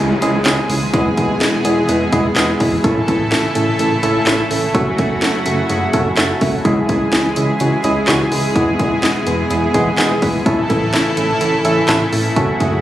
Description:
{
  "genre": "synth-pop",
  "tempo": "126 BPM",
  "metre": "4/4",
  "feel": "straight",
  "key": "unclear",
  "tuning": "A4 = 441 Hz",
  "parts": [
    { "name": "tine electric piano", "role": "accompaniment", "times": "0.0-12.7 s", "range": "G#3 to A5", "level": "-17 LUFS", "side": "right 1 dB", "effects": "medium tremolo, shimmer reverb" },
    { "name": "lush unison pad", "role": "sustained chords", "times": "0.0-12.8 s", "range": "B2 to A4", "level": "-19 LUFS", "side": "equal", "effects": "chorus, shimmer reverb" },
    { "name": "chorused synth bass", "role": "bass", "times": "0.0-12.8 s", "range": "F#1 to E2", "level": "-22 LUFS", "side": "equal", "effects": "none" },
    { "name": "downlifter", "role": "sound effects", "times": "0.0-2.8 s", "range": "none", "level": "-26 LUFS", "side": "equal", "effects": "none" },
    { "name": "house drum kit", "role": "drums", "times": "0.2-12.7 s", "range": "handclaps, hi-hat, kick drum, snare drum", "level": "-19 LUFS", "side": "equal", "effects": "overdrive" }
  ],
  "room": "moderate plate reverb, RT60 2.0 s",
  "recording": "recorded on a phone in the room, club reverb, compression",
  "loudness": "-13 LUFS",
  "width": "side -13 dB against mid",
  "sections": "0.0-12.8 A section",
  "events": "tine electric piano fill 5.9-6.7",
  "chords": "0.0 C#m; 0.9 E; 2.8 A; 4.7 F#m7; 6.7 C#m; 8.6 E; 10.5 A"
}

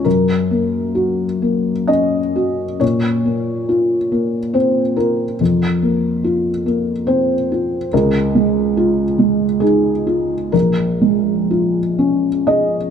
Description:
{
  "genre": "neoclassical minimalist piano",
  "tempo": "59-73 BPM",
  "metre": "3/4",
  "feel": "rubato",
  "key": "Bb minor",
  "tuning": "A4 = 440 Hz",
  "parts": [
    { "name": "felt-muted upright piano", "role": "solo", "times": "0.0-12.9 s", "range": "Bb1 to Eb5", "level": "-14 LUFS", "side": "equal", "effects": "none" }
  ],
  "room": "light reverb",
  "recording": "close, detailed microphones",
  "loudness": "-14 LUFS",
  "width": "side -8 dB against mid",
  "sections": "0.0-12.9 A section",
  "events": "none",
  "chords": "0.1 Gb; 2.8 Bbmadd9; 5.4 Fsus4; 7.9 Dbadd9; 10.5 Bbm7"
}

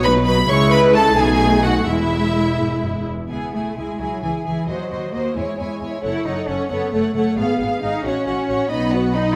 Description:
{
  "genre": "quick classical-period movement for string orchestra",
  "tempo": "82-92 BPM (dotted quarters)",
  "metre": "6/8",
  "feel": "rubato",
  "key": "E major, C# minor from 3.3 s",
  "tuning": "A4 = 440 Hz",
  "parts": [
    { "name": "rich studio violin section", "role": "melody", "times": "0.0-9.4 s", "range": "Eb5 to C#6", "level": "-27 LUFS", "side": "equal", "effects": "none" },
    { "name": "warm studio violin section", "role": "second line", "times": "0.0-9.4 s", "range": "E4 to F5", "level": "-25 LUFS", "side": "equal", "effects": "none" },
    { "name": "rich studio viola section", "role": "accompaniment", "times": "0.0-9.4 s", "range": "F#3 to A4", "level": "-26 LUFS", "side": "equal", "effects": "none" },
    { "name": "rich studio double bass section", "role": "bass", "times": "0.0-9.4 s", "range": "E1 to E2", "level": "-27 LUFS", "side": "equal", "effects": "none" },
    { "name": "warm studio cello section", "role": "bass", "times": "0.0-9.4 s", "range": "E2 to E4", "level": "-26 LUFS", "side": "equal", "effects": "none" }
  ],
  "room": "wet scoring stage reverb, RT60 1.6 s",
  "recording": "none",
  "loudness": "-19 LUFS",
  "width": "mono",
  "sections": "0.0-3.3 A section; 3.3-9.4 B section",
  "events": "none",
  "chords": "0.5 C#m; 1.2 B7; 1.9 E; 3.3 C#m; 4.7 Cdim; 5.4 C#m/E; 6.0 F#m; 7.4 Fdim; 8.1 F#m/A; 8.7 B"
}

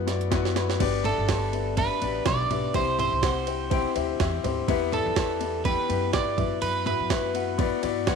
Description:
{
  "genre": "piano-driven pop",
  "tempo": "124 BPM",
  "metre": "4/4",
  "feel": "swing 56% on 16ths",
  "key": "unclear",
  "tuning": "A4 = 440 Hz",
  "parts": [
    { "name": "warm concert grand piano", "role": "accompaniment", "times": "0.0-8.2 s", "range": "G2 to G5", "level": "-28 LUFS", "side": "left 12 dB", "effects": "none" },
    { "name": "upright bass", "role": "bass", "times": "0.0-8.2 s", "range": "G1 to G2", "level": "-31 LUFS", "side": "right 1 dB", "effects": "none" },
    { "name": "jungle sampler-style drum kit", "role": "drums", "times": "0.1-8.2 s", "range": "crash cymbal, hi-hat, kick drum, ride cymbal, snare drum, toms", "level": "-29 LUFS", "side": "right 5 dB", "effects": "overdrive" },
    { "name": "electric guitar at the edge of break-up", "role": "melody", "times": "1.1-7.8 s", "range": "A4 to D5", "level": "-28 LUFS", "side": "right 4 dB", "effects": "none" }
  ],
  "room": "light reverb, digital ambience",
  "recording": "1960s-style stereo",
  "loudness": "-23 LUFS",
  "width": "side -6 dB against mid",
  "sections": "0.8-8.2 A section",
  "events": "drum fill 0.0-0.8",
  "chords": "0.0 Bsus4/F#; 0.8 G; 2.7 C; 4.7 Em; 6.4 Bsus4/F#"
}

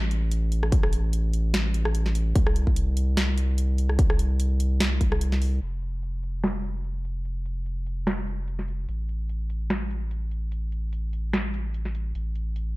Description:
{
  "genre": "future bass",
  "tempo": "147 BPM",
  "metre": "4/4",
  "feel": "swing 54% on 16ths, half-time",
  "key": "unclear",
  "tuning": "A4 = 440 Hz",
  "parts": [
    { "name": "saturated sub bass", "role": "bass", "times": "0.0-12.8 s", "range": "F1 to C2", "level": "-26 LUFS", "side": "equal", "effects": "sidechain pumping" },
    { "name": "trap drum kit", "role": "drums", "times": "0.1-12.6 s", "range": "crash cymbal, finger snaps, hi-hat, rim click, snare drum", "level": "-29 LUFS", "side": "equal", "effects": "low-pass filter on hats, small room ambience, low-pass filter on snare, low-pass filter on cymbals" },
    { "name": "electronic kick drum", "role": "drums", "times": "0.7-5.1 s", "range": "none", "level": "-22 LUFS", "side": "equal", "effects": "small room ambience" }
  ],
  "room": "little or no reverb",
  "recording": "dark, warm production",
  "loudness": "-24 LUFS",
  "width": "side -20 dB against mid",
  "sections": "0.0-5.6 A section; 5.6-12.8 B section",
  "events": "drop 0.0-5.6; filter sweep on drum 5.6-12.8",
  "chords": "none"
}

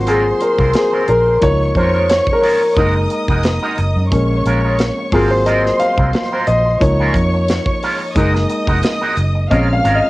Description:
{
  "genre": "lush 1970s-style soul",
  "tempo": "89 BPM",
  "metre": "4/4",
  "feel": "swing 54% on 16ths",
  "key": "unclear",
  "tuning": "A4 = 440 Hz",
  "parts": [
    { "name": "warm studio violin section", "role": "second line", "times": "0.0-10.1 s", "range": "C5 to F6", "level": "-22 LUFS", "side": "equal", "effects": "cassette tape" },
    { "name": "warm baby grand piano", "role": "accompaniment", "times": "0.0-10.1 s", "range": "F3 to F5", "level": "-16 LUFS", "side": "left 1 dB", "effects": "cassette tape" },
    { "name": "vintage muted fingered electric bass", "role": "bass", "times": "0.0-10.0 s", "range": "F1 to Gb2", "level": "-17 LUFS", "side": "equal", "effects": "none" },
    { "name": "electric guitar with an envelope filter", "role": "riff", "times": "0.1-10.1 s", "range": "Gb3 to Bb4", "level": "-22 LUFS", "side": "right 2 dB", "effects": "lush chorus, cassette tape" },
    { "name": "modern studio drum kit", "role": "drums", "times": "0.1-10.0 s", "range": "hi-hat, kick drum, snare drum", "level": "-20 LUFS", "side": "equal", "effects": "cassette tape" }
  ],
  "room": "light reverb",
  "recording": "home recording on cassette",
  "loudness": "-12 LUFS",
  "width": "side -19 dB against mid",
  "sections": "0.0-10.1 A section",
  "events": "grand piano solo 0.0-10.1",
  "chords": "0.0 Ab13; 1.4 Db6; 2.8 Gb69; 4.1 Bbm7; 5.1 Ab13; 6.8 Db6; 8.2 Gb69; 9.5 Bbm7"
}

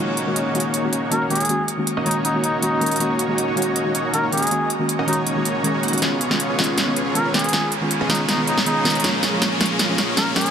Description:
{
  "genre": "future bass",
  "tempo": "159 BPM",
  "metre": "4/4",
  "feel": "swing 53% on 16ths, half-time",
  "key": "F# major",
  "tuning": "A4 = 440 Hz",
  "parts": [
    { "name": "soft round pluck", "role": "accompaniment", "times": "0.0-10.5 s", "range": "D#3 to A#4", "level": "-24 LUFS", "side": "equal", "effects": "chorus" },
    { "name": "shimmering ambient pad", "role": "sustained chords", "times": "1.9-10.5 s", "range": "F#4 to C#6", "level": "-32 LUFS", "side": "equal", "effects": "none" },
    { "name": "dense compressed supersaw", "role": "riff", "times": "0.0-10.5 s", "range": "A#3 to F#5", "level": "-24 LUFS", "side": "equal", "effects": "low-pass filter" },
    { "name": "saturated sub bass", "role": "bass", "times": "0.0-10.4 s", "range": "none", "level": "barely audible", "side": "none", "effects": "none" },
    { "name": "riser", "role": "sound effects", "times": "0.0-10.5 s", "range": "none", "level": "-31 LUFS", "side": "left 1 dB", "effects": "none" },
    { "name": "big-room dance drum kit", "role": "drums", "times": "0.2-10.5 s", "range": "hi-hat, snare drum", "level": "-22 LUFS", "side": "right 1 dB", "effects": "none" },
    { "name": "trumpet with cup mute", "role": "melody", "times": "1.1-10.5 s", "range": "D#4 to A#4", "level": "-24 LUFS", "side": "equal", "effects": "digital delay" }
  ],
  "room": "moderate shimmer reverb, RT60 5.6 s",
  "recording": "dense, heavily limited modern master",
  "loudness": "-18 LUFS",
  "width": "side -8 dB against mid",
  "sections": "0.0-10.5 A section",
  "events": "build-up 0.0-10.5; riser 0.0-10.5; drum fill 6.0-10.5",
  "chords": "0.0 F#6; 6.0 C#7; 9.0 A#m7"
}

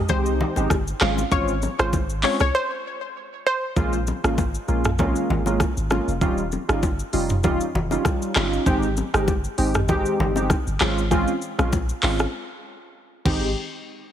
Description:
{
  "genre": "afrobeats",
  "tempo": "98 BPM",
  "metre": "4/4",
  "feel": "swing 55% on 16ths",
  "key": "Ab major",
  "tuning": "A4 = 440 Hz",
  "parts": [
    { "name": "analog pluck", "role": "melody", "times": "0.1-3.6 s", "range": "C5 to F5", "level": "-25 LUFS", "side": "left 1 dB", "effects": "chorus, ping-pong delay" },
    { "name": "warm analog keys", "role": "accompaniment", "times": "0.1-13.5 s", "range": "G3 to G4", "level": "-24 LUFS", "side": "right 1 dB", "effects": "chorus" },
    { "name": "punchy sub bass", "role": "bass", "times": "0.1-13.5 s", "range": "Eb1 to C2", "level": "-26 LUFS", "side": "equal", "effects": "none" },
    { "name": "afro-pop drum kit", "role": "drums", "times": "0.1-13.4 s", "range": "crash cymbal, handclaps, hi-hat, kick drum, rim click, shaker, toms", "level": "-24 LUFS", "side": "equal", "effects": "vintage 12-bit sampler grit" },
    { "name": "congas and bongos", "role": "percussion", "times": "0.1-13.5 s", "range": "none", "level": "-29 LUFS", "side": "left 3 dB", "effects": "none" }
  ],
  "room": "light reverb",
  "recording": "heavily compressed radio sound, multiband compression",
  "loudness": "-20 LUFS",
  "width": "side -10 dB against mid",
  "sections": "0.0-3.8 A section; 3.8-13.6 B section",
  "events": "break 2.5-3.8, 12.3-13.6",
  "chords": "0.0 Abmaj7; 1.0 Dbmaj7/Ab; 3.8 Bbm7; 6.2 Eb9; 8.7 Abmaj7; 10.8 Dbmaj7/Ab; 13.3 Abmaj7; 13.6 N.C."
}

